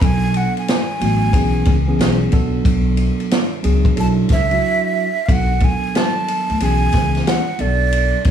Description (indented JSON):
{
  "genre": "hip hop, jazz-hop",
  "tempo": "91 BPM",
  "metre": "4/4",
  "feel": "swing 65% on 16ths",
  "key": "B dorian",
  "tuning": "A4 = 439 Hz",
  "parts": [
    { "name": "breathy mellow silver concert flute", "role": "melody", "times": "0.0-8.3 s", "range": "D5 to A5", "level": "-21 LUFS", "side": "right 3 dB", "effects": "plate reverb" },
    { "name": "mellow tine electric piano", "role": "accompaniment", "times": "0.0-8.3 s", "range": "E3 to A4", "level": "-21 LUFS", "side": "right 3 dB", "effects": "plate reverb" },
    { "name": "upright bass", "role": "bass", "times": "0.0-8.3 s", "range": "A1 to D2", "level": "-18 LUFS", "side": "left 1 dB", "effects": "none" },
    { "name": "open jazz drum kit", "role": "drums", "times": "0.0-8.3 s", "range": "hi-hat, kick drum, ride cymbal, snare drum", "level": "-19 LUFS", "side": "equal", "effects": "none" }
  ],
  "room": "light reverb",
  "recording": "studio ambience",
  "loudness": "-14 LUFS",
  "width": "side -9 dB against mid",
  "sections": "0.0-5.3 A section; 5.3-8.3 B section",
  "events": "flute solo 0.0-5.3; break 4.6-5.3",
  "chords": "0.0 Bm7; 1.3 C#m7/B; 2.3 Bm7; 4.0 E9sus4/B; 5.3 Bm7; 6.6 C#m7/B; 7.6 Bm7"
}